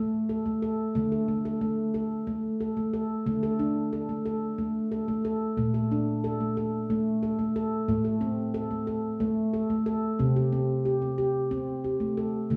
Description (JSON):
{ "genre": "world meditative, meditative tuned percussion", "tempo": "182 BPM (eighths)", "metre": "7/8", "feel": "straight", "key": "unclear", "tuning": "A4 = 440 Hz", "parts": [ { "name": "handpan", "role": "solo", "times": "0.0-12.6 s", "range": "A2 to A4", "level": "-28 LUFS", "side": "equal", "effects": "none" } ], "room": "wet echo chamber reverb, RT60 2.1 s", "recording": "cassette tape, studio ambience", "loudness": "-28 LUFS", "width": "mono", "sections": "0.0-3.3 A section; 3.3-12.6 B section", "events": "none", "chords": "0.0 N.C.; 1.0 D5; 5.6 Bb; 7.9 Am; 10.2 C5" }